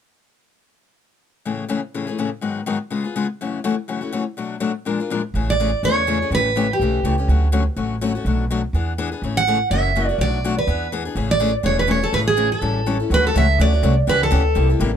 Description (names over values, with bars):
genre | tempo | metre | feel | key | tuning
acoustic string swing (jazz manouche) | 248 BPM | 4/4 | swing 56% on 8ths | A major | A4 = 440 Hz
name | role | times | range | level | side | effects
picked steel-string acoustic guitar | accompaniment | 1.5-14.9 s | F#2 to Bb4 | -23 LUFS | left 5 dB | none
upright bass | bass | 5.3-15.0 s | E1 to E2 | -20 LUFS | right 1 dB | none
picked steel-string acoustic guitar | melody | 5.5-7.0, 9.4-14.7 s | G4 to F#5 | -19 LUFS | right 2 dB | none
room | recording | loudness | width
little or no reverb | close, detailed microphones | -18 LUFS | side -8 dB against mid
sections
1.5-5.3 A section; 5.3-13.1 B section; 13.1-15.0 C section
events
none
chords
1.5 Amaj7; 2.4 G#m7; 2.9 C#7; 3.4 F#m7; 4.4 Bm7; 4.9 Bb7; 5.3 Amaj7; 6.3 A7; 7.3 Dmaj7; 8.3 Bm7; 8.7 E7; 9.2 Amaj7; 9.7 F#7; 10.2 Bm7; 10.7 E7; 11.2 Amaj7; 12.6 A7; 13.1 Dmaj7; 14.1 C#m7b5